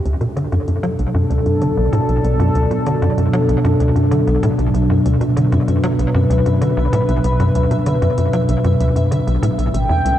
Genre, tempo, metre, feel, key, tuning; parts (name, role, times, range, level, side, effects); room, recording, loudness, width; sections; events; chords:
ambient, sequencer-driven space music; 96 BPM; 4/4; straight; B minor; A4 = 441 Hz
sweeping resonant pad; sustained chords; 0.0-10.2 s; A2 to B4; -17 LUFS; equal; chorus
pulsing gated texture; texture; 0.0-10.2 s; E5; -33 LUFS; right 1 dB; chorus, built-in reverb
tight sequencer bass; riff; 0.1-10.2 s; A1 to F#3; -17 LUFS; equal; lush chorus, tape echo
soft vintage rhythm box; percussion; 0.1-10.2 s; hi-hat, toms; -38 LUFS; left 3 dB; tape echo
mellow horn-like synth lead; melody; 9.7-10.2 s; G5; -18 LUFS; right 1 dB; chorus
wet cathedral reverb, RT60 5.7 s; in a vast, echoing space, cassette tape; -14 LUFS; side -12 dB against mid
0.0-10.2 A section
fade-in on synth texture 0.0-10.2; fade-in on drum 0.0-10.2
0.0 Bm7